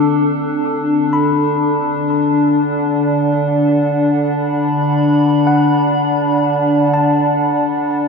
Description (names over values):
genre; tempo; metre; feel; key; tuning
ambient; free time; none; none; unclear; A4 = 440 Hz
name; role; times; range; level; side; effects
warbly tape-like pad; sustained chords; 0.0-8.1 s; C4 to B5; -14 LUFS; left 1 dB; chorus, built-in reverb
tine electric piano; arpeggios; 0.0-8.1 s; F#5 to D6; -23 LUFS; moving between left 6 dB and right 6 dB; auto-pan, ping-pong delay
organ-like drone; drone; 0.0-8.1 s; D3; -21 LUFS; right 2 dB; ensemble chorus, built-in reverb
room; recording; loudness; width
wet cathedral reverb, RT60 5.9 s; in a vast, echoing space; -13 LUFS; side -4 dB against mid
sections
0.0-8.1 A section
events
fade-in on synth drone 0.0-8.1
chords
0.0 D7sus4; 1.1 Bm/D